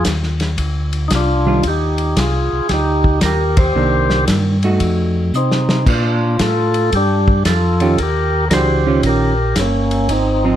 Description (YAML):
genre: soul jazz organ trio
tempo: 114 BPM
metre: 4/4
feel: swing 66% on 8ths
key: unclear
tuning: A4 = 440 Hz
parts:
  - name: percussive tonewheel organ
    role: melody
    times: 0.0-10.6 s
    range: Bb3 to C5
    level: -18 LUFS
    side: equal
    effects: slow rotary speaker, plate reverb
  - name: mellow tonewheel organ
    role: bass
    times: 0.0-10.6 s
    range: G1 to C3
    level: -17 LUFS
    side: equal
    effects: chorus vibrato, slow rotary speaker
  - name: warm soul drum kit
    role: drums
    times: 0.0-10.3 s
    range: crash cymbal, hi-hat, kick drum, ride cymbal, snare drum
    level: -20 LUFS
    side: equal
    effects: none
  - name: hollow-body jazz guitar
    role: accompaniment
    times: 1.5-10.6 s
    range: Eb3 to Ab4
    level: -18 LUFS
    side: right 4 dB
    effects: none
room: light reverb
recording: dark, warm production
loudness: -13 LUFS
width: side -11 dB against mid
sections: 0.0-10.6 A section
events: band accent 3.5; drum fill 5.3-5.9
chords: 0.0 Fm13/C; 3.8 Cm9; 4.8 F7b9; 5.9 Bbmaj7; 8.0 Eb9